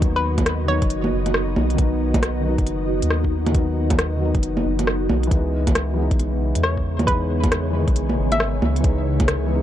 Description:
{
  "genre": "future garage",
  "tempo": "136 BPM",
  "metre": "4/4",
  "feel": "swing 63% on 16ths",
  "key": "unclear",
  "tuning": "A4 = 440 Hz",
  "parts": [
    { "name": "felt-muted upright piano", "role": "accompaniment", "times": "0.0-9.6 s", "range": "D#3 to D#4", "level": "-26 LUFS", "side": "left 3 dB", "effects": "vintage 12-bit sampler grit, sidechain pumping, low-pass filter, tape echo" },
    { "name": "ethereal airy pad", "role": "sustained chords", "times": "0.0-9.6 s", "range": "C#3 to D#5", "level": "-27 LUFS", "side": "right 2 dB", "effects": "ensemble chorus, built-in reverb, phaser, sidechain pumping" },
    { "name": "soft dub sub bass", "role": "bass", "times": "0.0-9.6 s", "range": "F#1 to E2", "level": "-23 LUFS", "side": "equal", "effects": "sidechain pumping" },
    { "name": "electronic kick drum", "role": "drums", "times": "0.0-9.3 s", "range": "none", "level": "-21 LUFS", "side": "equal", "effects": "vintage 12-bit sampler grit" },
    { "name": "organic electronic drum kit", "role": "drums", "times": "0.0-9.4 s", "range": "bongos, hi-hat, rim click", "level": "-24 LUFS", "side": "right 1 dB", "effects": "vintage 12-bit sampler grit" },
    { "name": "hollow square pluck", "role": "melody", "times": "0.2-1.3, 6.6-8.6 s", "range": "B4 to E5", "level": "-28 LUFS", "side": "equal", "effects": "chorus, vintage 12-bit sampler grit, tape echo" }
  ],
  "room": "little or no reverb",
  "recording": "dark, warm production",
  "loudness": "-18 LUFS",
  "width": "side -11 dB against mid",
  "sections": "0.0-9.6 A section",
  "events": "kick drops out 4.4-5.3",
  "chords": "0.0 B; 5.3 C#m7"
}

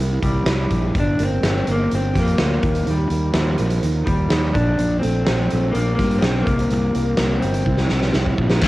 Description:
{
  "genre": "quiet-loud alternative rock",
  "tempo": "125 BPM",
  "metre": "4/4",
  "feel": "straight",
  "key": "unclear",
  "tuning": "A4 = 440 Hz",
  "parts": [
    { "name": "picked old ladder-braced acoustic guitar", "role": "arpeggios", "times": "0.0-8.6 s", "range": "G2 to G4", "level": "-28 LUFS", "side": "right 5 dB", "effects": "cassette tape" },
    { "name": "fuzz fingered electric bass", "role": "bass", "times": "0.0-8.7 s", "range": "G1 to G2", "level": "-20 LUFS", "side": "equal", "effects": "overdrive" },
    { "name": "electric guitar through a small old amp", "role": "melody", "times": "0.2-8.3 s", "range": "G3 to D4", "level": "-23 LUFS", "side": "left 1 dB", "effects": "cassette tape" },
    { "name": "huge arena drum kit", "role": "drums", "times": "0.2-8.7 s", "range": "crash cymbal, hi-hat, kick drum, snare drum", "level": "-22 LUFS", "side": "equal", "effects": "cassette tape" },
    { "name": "scooped high-gain guitar", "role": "riff", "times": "8.6-8.7 s", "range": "G2 to D3", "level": "-17 LUFS", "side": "left 4 dB", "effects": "distortion, cassette tape" }
  ],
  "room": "studio reverb",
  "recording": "home recording on cassette",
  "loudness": "-17 LUFS",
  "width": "side -17 dB against mid",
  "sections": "0.0-8.6 A section",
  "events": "drum fill 7.7-8.6",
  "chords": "0.0 C7; 0.9 Gm7; 2.6 Ebadd9; 4.5 Bbmaj7; 6.5 C7"
}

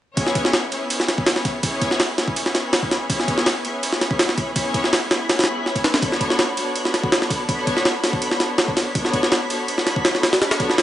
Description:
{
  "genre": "drum and bass, jungle",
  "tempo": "164 BPM",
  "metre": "4/4",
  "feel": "straight",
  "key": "C# phrygian",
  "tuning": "A4 = 438 Hz",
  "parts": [
    { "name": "rich studio string section", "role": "sustained chords", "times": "0.2-10.8 s", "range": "B3 to C#5", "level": "-24 LUFS", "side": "left 1 dB", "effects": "vintage 12-bit sampler grit" },
    { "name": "jungle sampler-style drum kit", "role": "drums", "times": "0.2-10.8 s", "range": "kick drum, ride cymbal, snare drum", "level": "-19 LUFS", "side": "equal", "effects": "high-pass filter on cymbals, studio reverb, high-pass filter on kick, high-pass filter on snare" },
    { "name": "twinkling granular texture", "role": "texture", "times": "0.7-10.8 s", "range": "B5", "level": "-31 LUFS", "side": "right 1 dB", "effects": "built-in reverb" }
  ],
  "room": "light reverb, digital ambience",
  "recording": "vinyl crackle, nothing above 10.6 kHz",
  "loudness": "-18 LUFS",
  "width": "side -12 dB against mid",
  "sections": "0.2-10.8 A section",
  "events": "none",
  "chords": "0.2 C#m7; 6.0 Bm7"
}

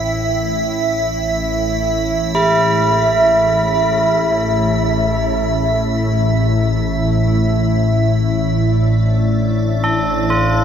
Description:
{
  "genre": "dark ambient drone",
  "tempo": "free time",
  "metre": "none",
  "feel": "none",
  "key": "unclear",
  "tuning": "A4 = 440 Hz",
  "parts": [
    { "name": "tubular bells", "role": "arpeggios", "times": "0.0-10.6 s", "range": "E4 to A4", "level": "-19 LUFS", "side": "right 2 dB", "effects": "ping-pong delay" },
    { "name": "organ-like drone", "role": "drone", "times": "0.0-10.6 s", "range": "A1 to A2", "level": "-17 LUFS", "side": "equal", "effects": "ensemble chorus, built-in reverb" },
    { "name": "icy glass pad", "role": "texture", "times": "0.0-10.6 s", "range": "D5 to E5", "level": "-20 LUFS", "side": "right 1 dB", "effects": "chorus, built-in reverb" }
  ],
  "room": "wet huge ambient reverb, RT60 8.9 s",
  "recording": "none",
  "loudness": "-14 LUFS",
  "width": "side -8 dB against mid",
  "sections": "0.0-10.6 A section",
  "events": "fade-in on synth drone 0.0-10.6",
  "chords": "0.0 A5; 8.4 Dm/A"
}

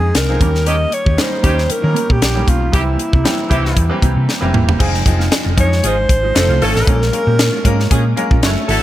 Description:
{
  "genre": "polished 1980s jazz-funk pop",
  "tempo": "116 BPM",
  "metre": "4/4",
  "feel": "swing 54% on 16ths",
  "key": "F minor",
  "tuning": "A4 = 440 Hz",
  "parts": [
    { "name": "breathy alto saxophone", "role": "melody", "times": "0.0-7.9 s", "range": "E4 to Eb5", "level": "-20 LUFS", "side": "equal", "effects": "none" },
    { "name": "clear baby grand piano", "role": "accompaniment", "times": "0.0-8.8 s", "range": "Eb3 to Db5", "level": "-21 LUFS", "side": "equal", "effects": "wide subtle chorus" },
    { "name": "mellow electric guitar", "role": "riff", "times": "0.0-8.7 s", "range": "Ab3 to A4", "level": "-25 LUFS", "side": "right 5 dB", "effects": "analog chorus" },
    { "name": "hollow-body short-scale fingered electric bass", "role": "bass", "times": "0.0-8.8 s", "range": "Eb1 to Eb3", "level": "-16 LUFS", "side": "equal", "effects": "none" },
    { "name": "tight funk drum kit", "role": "drums", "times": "0.1-8.8 s", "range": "crash cymbal, hi-hat, kick drum, snare drum, toms", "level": "-16 LUFS", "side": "equal", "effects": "gated reverb" },
    { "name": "warm horn section", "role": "second line", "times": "0.7-8.8 s", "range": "C4 to A4", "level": "-23 LUFS", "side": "equal", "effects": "none" }
  ],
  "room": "small room ambience",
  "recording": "none",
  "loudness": "-12 LUFS",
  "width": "side -14 dB against mid",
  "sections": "0.0-4.8 A section; 4.8-8.8 B section",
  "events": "drum fill 4.3-4.8",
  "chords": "0.4 Eb7; 2.7 C7; 4.8 Fm7; 6.4 F7; 6.9 Bbm7"
}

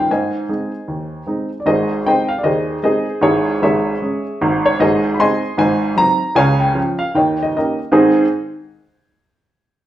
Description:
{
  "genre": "jazz, stride piano",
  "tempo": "153 BPM",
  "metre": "4/4",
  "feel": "swing 60% on 8ths",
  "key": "Ab major",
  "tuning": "A4 = 440 Hz",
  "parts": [
    { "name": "warm upright piano", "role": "solo", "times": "0.0-8.3 s", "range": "Ab1 to C6", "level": "-14 LUFS", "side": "equal", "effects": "none" }
  ],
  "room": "wet large studio reverb, RT60 0.9 s",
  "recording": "band playing live in one room",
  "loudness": "-14 LUFS",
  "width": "side -12 dB against mid",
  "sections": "0.0-1.7 A section; 1.7-7.9 B section; 7.9-9.5 C section",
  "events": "none",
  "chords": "0.1 Ab; 3.2 Dbm/Ab; 4.8 Ab; 5.6 Ab7; 6.4 Db; 7.2 Eb7; 7.9 Ab"
}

